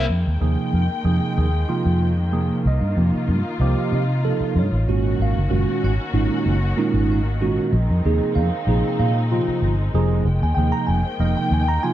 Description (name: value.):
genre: jazz.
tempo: 94 BPM.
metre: 4/4.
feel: straight.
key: F minor.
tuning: A4 = 440 Hz.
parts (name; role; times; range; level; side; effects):
tine electric piano; accompaniment; 0.0-11.9 s; Bb2 to Bb5; -22 LUFS; right 3 dB; phaser, plate reverb.
muted studio string section; sustained chords; 0.0-11.9 s; Eb3 to G5; -29 LUFS; left 2 dB; plate reverb.
vintage muted fingered electric bass; bass; 0.0-11.8 s; F1 to C3; -19 LUFS; equal; none.
room: light reverb.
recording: none.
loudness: -18 LUFS.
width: side -12 dB against mid.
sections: 0.1-11.9 A section.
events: none.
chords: 0.1 Fm11; 2.6 Cm7; 4.9 Ab9sus4; 7.7 Fm11.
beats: | 0.09 0.73 1.37 2.00 | 2.64 3.28 3.91 4.55 | 5.19 5.82 6.46 7.09 | 7.72 8.36 8.99 9.62 | 10.26 10.89 11.52.